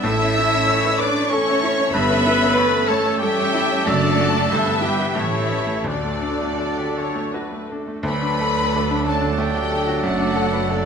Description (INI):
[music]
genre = classical, romantic movement for piano and orchestra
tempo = 81-97 BPM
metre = 3/4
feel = rubato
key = D major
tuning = A4 = 439 Hz
[part]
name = clear baby grand piano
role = melody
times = 0.0-10.9 s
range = D2 to C#5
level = -24 LUFS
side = equal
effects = none
[part]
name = warm symphonic violin section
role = melody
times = 0.0-10.9 s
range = D5 to E6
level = -27 LUFS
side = left 4 dB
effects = none
[part]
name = mellow concert flute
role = second line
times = 0.0-10.9 s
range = D5 to E6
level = -29 LUFS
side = left 3 dB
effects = none
[part]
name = warm clarinet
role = second line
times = 0.0-10.9 s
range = D4 to E5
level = -29 LUFS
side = right 1 dB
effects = none
[part]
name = warm symphonic violin section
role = second line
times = 0.0-10.9 s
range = D4 to E5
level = -29 LUFS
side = left 3 dB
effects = none
[part]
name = warm symphonic viola section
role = accompaniment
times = 0.0-10.9 s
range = A3 to E5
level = -26 LUFS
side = equal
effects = none
[part]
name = mellow French horn section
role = sustained chords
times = 0.0-10.9 s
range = B3 to A4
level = -29 LUFS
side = left 3 dB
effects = none
[part]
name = warm trombone section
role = sustained chords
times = 0.0-10.9 s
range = E3 to A3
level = -33 LUFS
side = right 4 dB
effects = none
[part]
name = mellow trumpet section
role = stabs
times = 0.0-10.9 s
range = A4 to D5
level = -30 LUFS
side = right 2 dB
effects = none
[part]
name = rich symphonic double bass section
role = bass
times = 0.0-10.9 s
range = F#1 to D2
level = -28 LUFS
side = right 4 dB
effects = none
[part]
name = warm symphonic cello section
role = bass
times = 0.0-10.9 s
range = D2 to E4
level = -27 LUFS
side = right 2 dB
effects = none
[part]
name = warm oboe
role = second line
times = 0.1-10.9 s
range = D4 to E5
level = -29 LUFS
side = right 1 dB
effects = none
[part]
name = mellow bassoon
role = accompaniment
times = 8.0-10.9 s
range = F#3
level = -31 LUFS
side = right 6 dB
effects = none
[sound]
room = moderate scoring stage reverb, RT60 1.5 s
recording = close, detailed microphones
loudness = -17 LUFS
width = side -6 dB against mid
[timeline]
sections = 0.0-8.1 A section; 8.1-10.9 A section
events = none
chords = 0.0 A; 1.9 A7/G; 3.9 D/F#; 4.5 Em/G; 5.2 A7; 5.9 D; 10.1 D/F#